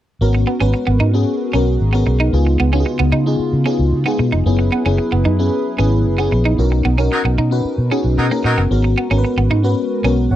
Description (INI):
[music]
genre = pop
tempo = 113 BPM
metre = 4/4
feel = straight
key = unclear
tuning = A4 = 440 Hz
[part]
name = FM electric piano with soft pad layer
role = accompaniment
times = 0.2-10.4 s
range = B3 to F#5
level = -19 LUFS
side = left 2 dB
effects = analog chorus
[part]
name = hollow soft pad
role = sustained chords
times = 0.2-10.4 s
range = C#3 to B4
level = -26 LUFS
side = right 1 dB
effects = chorus
[part]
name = vintage muted fingered electric bass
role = bass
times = 0.2-10.4 s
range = E#1 to C#3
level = -16 LUFS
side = equal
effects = none
[part]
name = electric guitar at the edge of break-up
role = riff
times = 0.3-10.1 s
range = A#3 to D#4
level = -21 LUFS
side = right 4 dB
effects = analog chorus
[part]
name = warm horn section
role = second line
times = 7.1-8.6 s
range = F#3 to A#4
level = -19 LUFS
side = equal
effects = none
[sound]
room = little or no reverb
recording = dry, close 1970s-style studio recording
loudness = -14 LUFS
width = side -12 dB against mid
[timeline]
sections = 0.2-10.4 A section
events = band accent 6.6-8.7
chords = 0.2 G#m11; 2.3 C#7; 4.5 F#9sus4; 6.6 Bmaj9; 8.7 G#m11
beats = | 0.21 0.74 1.27 1.80 | 2.33 2.87 3.40 3.93 | 4.46 4.99 5.53 6.06 | 6.59 7.12 7.65 8.19 | 8.72 9.25 9.78 10.31